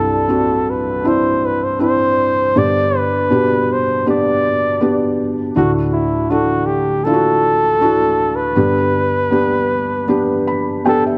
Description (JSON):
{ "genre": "pop", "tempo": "80 BPM", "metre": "4/4", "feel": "straight", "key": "G major", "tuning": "A4 = 440 Hz", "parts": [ { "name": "breathy flugelhorn", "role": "melody", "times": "0.0-11.0 s", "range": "E4 to D5", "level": "-19 LUFS", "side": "equal", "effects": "none" }, { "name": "felt-muted upright piano", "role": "accompaniment", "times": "0.0-11.2 s", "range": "C2 to B5", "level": "-19 LUFS", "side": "equal", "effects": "none" } ], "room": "moderate lush hall reverb, RT60 2.6 s", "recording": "dark, warm production", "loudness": "-16 LUFS", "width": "mono", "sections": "0.0-11.2 A section", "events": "felt piano fill 10.1-11.2", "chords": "0.0 Cadd9; 2.6 G; 5.5 Dadd9; 8.6 G" }